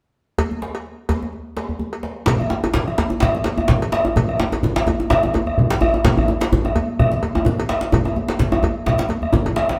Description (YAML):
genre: west african traditional, West African drum ensemble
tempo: 127 BPM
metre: 4/4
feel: swing 54% on 16ths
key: none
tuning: none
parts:
  - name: cowbell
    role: percussion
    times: 0.4-9.6 s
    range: none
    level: -30 LUFS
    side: equal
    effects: none
  - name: djembe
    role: percussion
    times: 0.4-9.7 s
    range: none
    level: -28 LUFS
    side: equal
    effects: none
  - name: bombo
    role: percussion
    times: 2.3-9.7 s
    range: none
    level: -23 LUFS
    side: equal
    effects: none
  - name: congas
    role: percussion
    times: 2.3-9.8 s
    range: none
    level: -26 LUFS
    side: equal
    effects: none
  - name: djembe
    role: percussion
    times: 2.3-9.8 s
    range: none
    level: -24 LUFS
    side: equal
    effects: none
room: moderate stone room reverb, RT60 1.0 s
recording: band playing live in one room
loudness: -19 LUFS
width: mono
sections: 0.4-2.3 A section; 2.3-9.8 B section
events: drum fill 9.4-9.8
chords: none